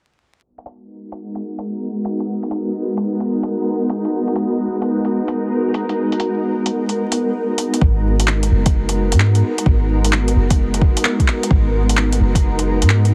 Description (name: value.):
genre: future garage.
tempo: 130 BPM.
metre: 4/4.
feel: swing 66% on 16ths.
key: G# minor.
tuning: A4 = 438 Hz.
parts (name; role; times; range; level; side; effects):
granular cloud pad; sustained chords; 1.0-13.1 s; G#3 to A#4; -22 LUFS; equal; built-in reverb, sidechain pumping.
deep house drum kit; drums; 0.6-13.1 s; handclaps, hi-hat; -25 LUFS; equal; none.
soft 808-style bass; bass; 7.8-13.1 s; F#1 to G#2; -18 LUFS; equal; tube saturation, sidechain pumping.
electronic kick drum; drums; 7.8-12.4 s; none; -17 LUFS; equal; none.
room: light reverb.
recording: heavily compressed radio sound, vinyl crackle, low-pass filter.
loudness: -18 LUFS.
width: mono.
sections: 0.4-7.8 A section; 7.8-13.1 B section.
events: filter sweep on ambient pad 0.4-7.8; filter sweep 0.4-7.8.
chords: 0.4 G#m9.